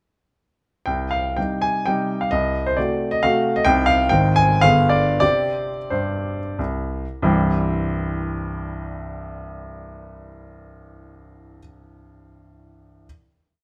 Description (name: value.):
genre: classical, romantic triple-time dance for piano with dotted rhythms.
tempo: 83-147 BPM.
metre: 3/4.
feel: rubato.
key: unclear.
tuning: A4 = 440 Hz.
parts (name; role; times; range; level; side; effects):
warm baby grand piano; solo; 0.9-13.1 s; G1 to Ab5; -21 LUFS; equal; none.
room: moderate stone room reverb, RT60 1.4 s.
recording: none.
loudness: -20 LUFS.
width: mono.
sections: 0.9-7.2 A section; 7.2-10.9 final chord.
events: slowing down 3.0-7.2.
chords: 0.9 Cm; 2.3 Cdim7; 3.7 Cm; 4.1 Ab; 4.6 G7b9; 5.2 C5; 7.2 C.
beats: | 0.86 1.37 1.85 | 2.31 2.77 3.23 | 3.65 4.11 4.63 | 5.22 5.91 6.58 | 7.23 7.83 8.46 | 9.04 9.65 10.28.